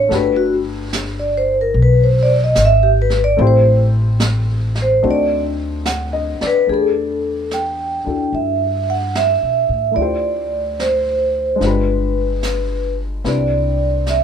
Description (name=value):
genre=jazz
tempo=73 BPM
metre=4/4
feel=swing 67% on 8ths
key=G major, E minor from 6.7 s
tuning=A4 = 440 Hz
part: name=vibraphone with medium mallets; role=melody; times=0.0-14.2 s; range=F#4 to G5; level=-16 LUFS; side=right 1 dB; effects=none
part: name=dark baby grand piano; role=accompaniment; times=0.0-14.2 s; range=Ab3 to F#5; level=-23 LUFS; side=left 6 dB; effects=none
part: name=upright bass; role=bass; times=0.0-14.2 s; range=G1 to B2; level=-18 LUFS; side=left 1 dB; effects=none
part: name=vintage brush drum kit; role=drums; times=0.1-14.2 s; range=brushed snare drum, hi-hat, snare drum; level=-26 LUFS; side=right 2 dB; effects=none
room=light reverb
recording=minimal, uncompressed stereo recording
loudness=-14 LUFS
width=side -8 dB against mid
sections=0.0-6.7 A section; 6.7-14.2 B section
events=vibraphone solo 0.0-6.7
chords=0.1 Gmaj9; 3.4 Am7; 5.0 D7b9; 6.7 Em11; 10.0 Dm11; 11.6 G7b9; 13.2 Cmaj9